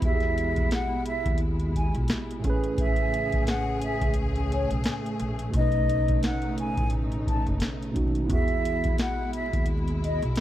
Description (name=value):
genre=lo-fi hip hop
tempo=87 BPM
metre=4/4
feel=swing 57% on 16ths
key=E major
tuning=A4 = 440 Hz
part: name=breathy mellow jazz flute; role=melody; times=0.0-10.2 s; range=C#5 to A5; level=-31 LUFS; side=equal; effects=none
part: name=bright tine electric piano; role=accompaniment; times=0.0-10.4 s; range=A2 to B4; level=-31 LUFS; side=right 3 dB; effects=cassette tape
part: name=warm studio string section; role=sustained chords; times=0.0-10.4 s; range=B2 to G#4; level=-34 LUFS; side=left 2 dB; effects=none
part: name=upright bass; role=bass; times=0.0-10.4 s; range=F#1 to E2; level=-30 LUFS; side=equal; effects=none
part: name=booming analog drum machine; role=drums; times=0.0-10.4 s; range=hi-hat, kick drum, snare drum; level=-28 LUFS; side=equal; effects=none
room=small room ambience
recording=vinyl crackle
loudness=-24 LUFS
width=side -13 dB against mid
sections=0.0-10.4 A section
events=none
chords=0.0 Emaj7; 2.4 Amaj7; 5.5 B9; 8.3 Emaj7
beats=| 0.02 0.71 1.40 2.09 | 2.78 3.47 4.16 4.85 | 5.54 6.23 6.92 7.61 | 8.30 8.99 9.68 10.37